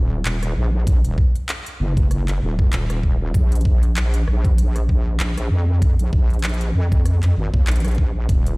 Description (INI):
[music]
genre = glitch hop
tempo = 97 BPM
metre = 4/4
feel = swing 56% on 16ths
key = unclear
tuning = A4 = 439 Hz
[part]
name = wobble bass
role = bass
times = 0.0-8.6 s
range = Eb1 to F2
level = -19 LUFS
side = equal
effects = chorus
[part]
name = pop drum kit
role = drums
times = 0.3-8.6 s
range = handclaps, hi-hat, rim click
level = -29 LUFS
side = equal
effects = none
[part]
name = electronic kick drum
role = drums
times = 0.9-8.4 s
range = none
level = -17 LUFS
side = equal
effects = none
[sound]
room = little or no reverb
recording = played on a big sound system in a bare room, large studio reverb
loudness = -16 LUFS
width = side -28 dB against mid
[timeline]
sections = 0.0-8.6 A section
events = none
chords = none